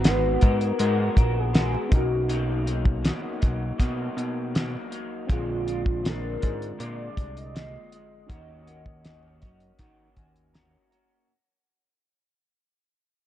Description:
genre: indie pop, bedroom pop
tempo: 80 BPM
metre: 4/4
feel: straight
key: unclear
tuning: A4 = 443 Hz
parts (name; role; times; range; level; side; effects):
- warm velvety synth lead; melody; 0.0-10.5 s; E#4 to D#5; -30 LUFS; left 1 dB; analog chorus, tape echo
- electric guitar through a small old amp; accompaniment; 0.0-11.3 s; A#2 to A#4; -32 LUFS; left 2 dB; lush chorus, vibrato effect
- tine electric piano; accompaniment; 0.0-11.3 s; D3 to A#5; -38 LUFS; right 2 dB; overdrive, medium stereo tremolo
- fat analog bass; bass; 0.0-10.8 s; G#1 to D#3; -28 LUFS; equal; none
- cloth-damped thuddy drum kit; drums; 0.0-11.1 s; hi-hat, kick drum, snare drum; -22 LUFS; equal; vintage 12-bit sampler grit
room: light reverb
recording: dark, warm production, faint mains hum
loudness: -23 LUFS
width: side -12 dB against mid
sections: 0.0-11.3 A section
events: fade-out 0.0-11.3; tine electric piano fill 9.0-11.3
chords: 0.0 G#m9; 1.9 Bmaj7; 5.3 A#7; 8.3 D#m7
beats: 0.04 0.80 1.54 | 2.29 3.04 3.79 4.54 | 5.29 6.04 6.79 7.54 | 8.29 9.04 9.79 10.55

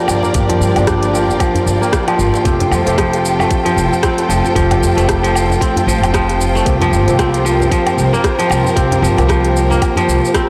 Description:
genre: organic downtempo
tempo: 114 BPM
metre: 4/4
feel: swing 58% on 16ths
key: unclear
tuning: A4 = 440 Hz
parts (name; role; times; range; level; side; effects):
- barky tine electric piano; accompaniment; 0.0-10.5 s; F3 to G4; -22 LUFS; equal; overdrive, subtle chorus, sidechain pumping, delay
- warm studio string section; sustained chords; 0.0-10.5 s; F4 to G5; -22 LUFS; equal; sidechain pumping
- kora; arpeggios; 0.0-10.5 s; F3 to D4; -20 LUFS; equal; low-pass filter, delay
- upright bass; bass; 0.1-10.2 s; F1 to G2; -20 LUFS; equal; sidechain pumping
- organic electronic drum kit; drums; 0.1-10.5 s; hi-hat, rim click, shaker, woodblock; -24 LUFS; equal; soft clipping on snare
- djembe; percussion; 0.1-10.1 s; none; -26 LUFS; equal; none
- electronic kick drum; drums; 0.3-10.5 s; none; -21 LUFS; equal; none
room: light reverb, small room ambience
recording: blown-out, overdriven recording, overdrive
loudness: -14 LUFS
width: mono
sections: 0.0-10.5 A section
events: filter sweep on kora 0.0-10.5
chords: 0.0 Gm7; 2.5 Fadd9; 6.7 C7sus4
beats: | 0.35 0.87 1.40 1.93 | 2.45 2.98 3.51 4.03 | 4.56 5.08 5.61 6.14 | 6.66 7.19 7.72 8.24 | 8.77 9.29 9.82 10.35

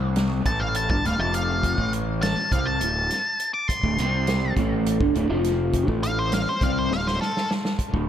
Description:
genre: psychedelic rock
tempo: 204 BPM (eighths)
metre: 7/8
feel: straight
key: unclear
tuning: A4 = 440 Hz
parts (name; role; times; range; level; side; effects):
- electric guitar through a small old amp; riff; 0.0-8.1 s; D2 to C4; -26 LUFS; equal; phaser, dub echo
- fuzz fingered electric bass; bass; 0.0-8.1 s; D1 to C2; -26 LUFS; equal; overdrive
- vintage drum kit; drums; 0.2-8.1 s; hi-hat, kick drum, snare drum; -27 LUFS; right 1 dB; dub echo
- octave-fuzz lead guitar; melody; 0.5-7.5 s; A4 to D6; -26 LUFS; left 1 dB; distortion, dub echo
room: small room reverb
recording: echo-heavy mix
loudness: -21 LUFS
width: side -10 dB against mid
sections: 0.0-8.1 A section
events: lead electric guitar solo 0.0-8.1; drum fill 6.9-7.8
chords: 0.5 D5; 1.2 F5; 1.8 A5; 2.4 D5; 4.0 C5; 4.6 D5; 5.3 F5; 5.9 A5; 6.5 D5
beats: 0.17 0.46 0.75 1.05 1.34 | 1.63 1.93 2.22 2.51 2.81 3.10 3.39 | 3.69 3.98 4.27 4.57 4.86 5.15 5.45 | 5.74 6.03 6.33 6.62 6.91 7.21 7.50 | 7.79

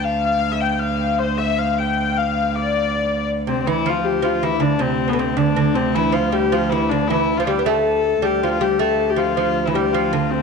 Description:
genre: medieval dance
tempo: 105 BPM (dotted quarters)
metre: 6/8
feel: straight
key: D minor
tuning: A4 = 435 Hz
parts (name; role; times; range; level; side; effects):
- warm hurdy-gurdy; melody; 0.0-10.4 s; A3 to G5; -20 LUFS; left 8 dB; tape echo
- clear viola da gamba; drone; 0.0-10.4 s; D2; -24 LUFS; right 2 dB; none
- lute; second line; 3.5-10.4 s; B2 to B3; -21 LUFS; right 10 dB; none
room: wet echo chamber reverb, RT60 1.7 s, small room reverb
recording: 1960s-style stereo with parts hard left and right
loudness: -17 LUFS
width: side -5 dB against mid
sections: 0.0-3.7 A section; 3.7-10.4 A section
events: none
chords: none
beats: | 0.22 0.79 | 1.36 1.94 | 2.51 3.08 | 3.65 4.23 | 4.80 5.37 | 5.94 6.51 | 7.08 7.65 | 8.22 8.79 | 9.36 9.93

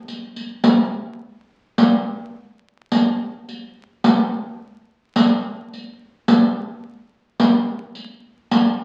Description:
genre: italian folk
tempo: 107 BPM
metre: 4/4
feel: straight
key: none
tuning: none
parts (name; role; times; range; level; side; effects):
- riq; percussion; 0.1-8.8 s; none; -19 LUFS; equal; none
room: wet large studio reverb, RT60 0.9 s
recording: very old 78 rpm record, vinyl crackle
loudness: -19 LUFS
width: mono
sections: 0.0-8.8 A section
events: none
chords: none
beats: 0.07 0.64 1.21 | 1.78 2.35 2.92 3.48 | 4.04 4.61 5.16 5.72 | 6.28 6.83 7.39 7.95 | 8.51

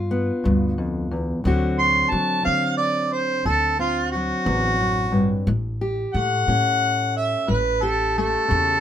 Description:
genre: acoustic country blues, solo or duo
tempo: 60 BPM (dotted quarters)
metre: 12/8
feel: straight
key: D mixolydian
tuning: A4 = 440 Hz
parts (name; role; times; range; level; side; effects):
- fingerpicked steel-string acoustic guitar; accompaniment; 0.0-8.8 s; D2 to G4; -24 LUFS; left 1 dB; none
- upright bass; bass; 0.0-8.8 s; A1 to D3; -26 LUFS; equal; none
- mellow harmonica; melody; 1.8-8.8 s; F4 to C6; -20 LUFS; right 1 dB; none
room: light reverb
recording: minimal, uncompressed stereo recording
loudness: -19 LUFS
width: side -10 dB against mid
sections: 0.0-8.8 A section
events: harmonica solo 0.0-8.8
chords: 0.0 G7; 1.4 D7; 5.5 A7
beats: 0.44 | 1.45 2.45 3.46 4.47 | 5.47 6.49 7.50 8.51

